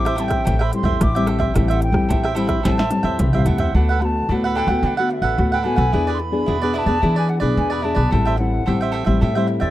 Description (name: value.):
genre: samba and choro.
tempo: 110 BPM.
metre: 4/4.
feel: straight.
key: A minor.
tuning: A4 = 442 Hz.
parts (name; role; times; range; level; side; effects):
wooden flute; melody; 0.0-9.7 s; D5 to D6; -25 LUFS; left 1 dB; none.
cavaquinho; accompaniment; 0.0-9.7 s; D4 to G5; -24 LUFS; right 5 dB; none.
nylon-string guitar; accompaniment; 0.0-9.7 s; A2 to G#4; -22 LUFS; left 2 dB; none.
upright bass; bass; 0.0-9.7 s; A1 to E3; -21 LUFS; equal; none.
techno drum kit; drums; 0.1-3.7 s; hi-hat, kick drum, rim click, snare drum, toms; -23 LUFS; equal; none.
room: little or no reverb.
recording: rough home demo mix.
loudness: -16 LUFS.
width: side -14 dB against mid.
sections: 0.0-3.7 A section; 3.7-9.7 B section.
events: drum fill 2.7-3.7.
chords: 0.0 Am7; 3.7 D6; 5.9 E7; 8.1 Am7.